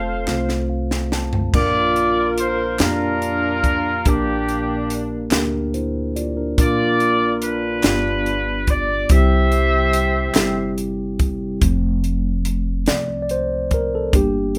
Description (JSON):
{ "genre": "slow gospel", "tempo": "48 BPM (dotted quarters)", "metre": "6/8", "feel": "straight", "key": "F major", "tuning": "A4 = 440 Hz", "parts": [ { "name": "warm horn section", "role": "melody", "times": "0.0-10.8 s", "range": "Bb3 to F5", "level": "-22 LUFS", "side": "equal", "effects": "none" }, { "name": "mellow tine electric piano", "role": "accompaniment", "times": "0.0-14.6 s", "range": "G2 to A5", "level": "-25 LUFS", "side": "equal", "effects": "none" }, { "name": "upright bass", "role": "bass", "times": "0.0-14.6 s", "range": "F1 to F2", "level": "-26 LUFS", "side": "equal", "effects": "none" }, { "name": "crisp fusion drum kit", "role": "drums", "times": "0.3-14.6 s", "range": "crash cymbal, hi-hat, kick drum, snare drum, toms", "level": "-22 LUFS", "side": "equal", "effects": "none" }, { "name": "group handclap", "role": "percussion", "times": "0.3-10.7 s", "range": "none", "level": "-32 LUFS", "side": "equal", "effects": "none" } ], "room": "moderate studio reverb, RT60 0.6 s", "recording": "rough home demo mix", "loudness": "-20 LUFS", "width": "mono", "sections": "0.0-1.5 A section; 1.5-11.6 B section; 11.6-14.6 C section", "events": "drum fill 0.3-1.5; tine electric piano fill 0.3-1.5; tine electric piano solo 11.6-14.6", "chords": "0.0 F; 1.5 Bb; 4.1 Gm/Bb; 6.6 Bb; 7.8 G7; 9.1 C; 11.6 F", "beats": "0.28 | 1.54 2.80 | 4.06 5.32 | 6.58 7.84 | 9.10 10.36 | 11.62 12.88 | 14.14" }